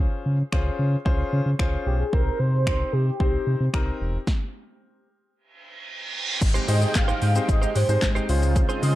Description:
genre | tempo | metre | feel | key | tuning
dance-pop | 112 BPM | 4/4 | straight | Ab major | A4 = 442 Hz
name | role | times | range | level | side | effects
warm baby grand piano | accompaniment | 0.0-9.0 s | C4 to C5 | -31 LUFS | left 3 dB | sidechain pumping
sub bass with octave | bass | 0.0-9.0 s | Fb1 to Db3 | -23 LUFS | equal | sidechain pumping
deep house drum kit | drums | 0.5-9.0 s | crash cymbal, finger snaps, handclaps, hi-hat, kick drum, shaker, snare drum | -24 LUFS | equal | overdrive
warm velvety synth lead | melody | 1.9-9.0 s | G4 to F5 | -28 LUFS | right 1 dB | chorus
reverse cymbal and downlifter | sound effects | 5.7-9.0 s | none | -32 LUFS | right 2 dB | none
lush unison pad | sustained chords | 6.4-9.0 s | Db3 to G5 | -33 LUFS | equal | chorus, sidechain pumping
mallet-like synth pluck | arpeggios | 6.4-8.9 s | Ab3 to C5 | -36 LUFS | right 1 dB | none
direct-recorded clean electric guitar | riff | 6.4-9.0 s | Ab3 to C5 | -32 LUFS | right 4 dB | analog chorus
room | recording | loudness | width
light reverb | dark, warm production | -20 LUFS | side -15 dB against mid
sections
0.0-6.4 A section; 6.4-9.0 B section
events
stop 4.3-6.4; reverse cymbal 5.7-6.4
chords
0.0 Dbmaj7; 2.1 Cm; 4.3 N.C.; 6.4 Abmaj7; 8.3 Dbmaj7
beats
0.52 1.06 1.59 | 2.13 2.67 3.20 3.74 | 4.27 4.81 5.34 5.88 | 6.42 6.95 7.49 8.02 | 8.56

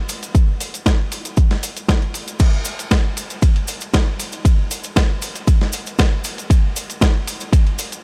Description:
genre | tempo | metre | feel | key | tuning
nu-disco | 117 BPM | 4/4 | straight | none | none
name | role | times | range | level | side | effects
dusty soul sampler-style drum kit | drums | 0.1-8.0 s | crash cymbal, hi-hat, ride cymbal, snare drum | -26 LUFS | equal | studio reverb
cabasa | percussion | 0.1-8.0 s | none | -32 LUFS | equal | none
electronic kick drum | drums | 0.3-7.6 s | none | -17 LUFS | equal | studio reverb
room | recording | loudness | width
little or no reverb | none | -18 LUFS | mono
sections
0.0-8.0 A section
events
none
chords
none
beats
| 0.35 0.86 1.37 1.89 | 2.40 2.91 3.42 3.94 | 4.45 4.96 5.47 5.99 | 6.50 7.01 7.53

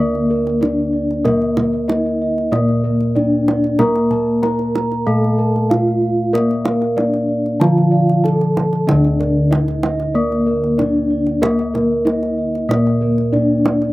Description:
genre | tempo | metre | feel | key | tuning
Javanese gamelan | 94 BPM | 4/4 | straight | unclear | A4 = 438 Hz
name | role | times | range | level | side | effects
gamelan-type bronze metallophone | melody | 0.0-13.9 s | Bb3 to Bb4 | -20 LUFS | equal | slapback echo
gamelan-type bronze metallophone | accompaniment | 0.0-13.9 s | D3 to Bb3 | -20 LUFS | left 2 dB | none
gamelan-type bossed gongs | arpeggios | 0.0-13.7 s | Bb4 to Bb5 | -26 LUFS | left 2 dB | slapback echo
gamelan-type bronze metallophone | arpeggios | 0.0-13.9 s | Bb4 to Bb5 | -23 LUFS | right 3 dB | slapback echo
gamelan-type bossed gongs | bass | 0.0-13.9 s | D2 to Bb4 | -21 LUFS | equal | none
kendang | percussion | 0.1-13.9 s | none | -24 LUFS | right 2 dB | none
room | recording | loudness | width
little or no reverb | recorded outdoors, with no room sound | -14 LUFS | side -18 dB against mid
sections
0.0-13.9 A section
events
none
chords
none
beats
0.61 | 1.25 1.88 2.52 3.15 | 3.79 4.42 5.06 5.70 | 6.33 6.97 7.60 8.24 | 8.87 9.51 10.14 10.78 | 11.42 12.05 12.69 13.32

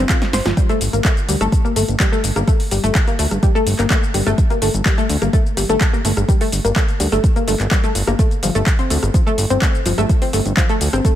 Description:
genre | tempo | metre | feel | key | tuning
progressive house | 126 BPM | 4/4 | straight | G minor | A4 = 441 Hz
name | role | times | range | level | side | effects
analog pluck | arpeggios | 0.0-11.2 s | F3 to C5 | -20 LUFS | left 1 dB | wide subtle chorus, cassette tape, sidechain pumping, ping-pong delay
fat analog bass | bass | 0.0-11.0 s | G1 to D2 | -19 LUFS | equal | sidechain pumping
deep house drum kit | drums | 0.1-11.1 s | handclaps, hi-hat, rim click, shaker, snare drum | -22 LUFS | left 1 dB | overdrive
electronic kick drum | drums | 0.1-11.1 s | none | -16 LUFS | equal | overdrive
room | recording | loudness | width
light reverb | none | -14 LUFS | side -12 dB against mid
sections
0.0-11.2 A section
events
drum fill 0.2-0.6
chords
0.0 Dm7 (rootless); 0.6 Gmadd9; 8.2 Dm/G (rootless)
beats
0.10 | 0.57 1.05 1.52 2.00 | 2.48 2.95 3.43 3.90 | 4.38 4.86 5.33 5.81 | 6.29 6.76 7.24 7.71 | 8.19 8.67 9.14 9.62 | 10.10 10.57 11.05

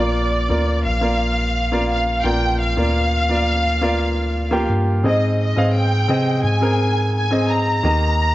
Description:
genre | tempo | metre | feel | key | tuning
piano-driven pop | 86 BPM | 4/4 | straight | Bb mixolydian | A4 = 440 Hz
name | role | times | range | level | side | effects
warm studio violin section | melody | 0.0-8.3 s | D5 to Bb5 | -21 LUFS | equal | none
clear baby grand piano | accompaniment | 0.0-8.3 s | Ab2 to F5 | -21 LUFS | equal | none
mellow tine electric piano | bass | 0.0-8.3 s | Bb1 to C3 | -20 LUFS | equal | medium stereo tremolo
room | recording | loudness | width
light reverb, small room ambience | worn, warbling old tape, cassette tape, warbly pitch drift, nothing above 7.9 kHz | -16 LUFS | side -16 dB against mid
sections
0.0-8.3 A section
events
none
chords
0.0 Bb; 5.0 Ab; 7.8 Eb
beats
0.15 0.85 1.55 | 2.25 2.95 3.65 4.34 | 5.04 5.74 6.44 7.14 | 7.84

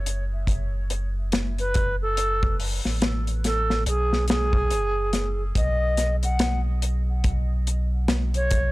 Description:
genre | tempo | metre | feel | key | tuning
trip hop | 71 BPM | 4/4 | swing 60% on 16ths | F# dorian | A4 = 440 Hz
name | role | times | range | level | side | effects
warm sub bass | bass | 0.0-8.7 s | F#1 to B1 | -25 LUFS | equal | none
modern studio drum kit | drums | 0.1-8.7 s | hi-hat, kick drum, snare drum | -25 LUFS | equal | none
bright reedy baroque flute | melody | 1.6-8.7 s | G#4 to F#5 | -28 LUFS | equal | vintage 12-bit sampler grit, dub echo
room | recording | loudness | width
studio ambience | dry, gritty hardware recording, transformer saturation | -22 LUFS | side -19 dB against mid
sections
0.0-8.7 A section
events
none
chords
0.0 F#m; 5.6 N.C.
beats
0.48 1.33 | 2.17 3.02 3.86 4.71 | 5.55 6.40 7.24 8.09

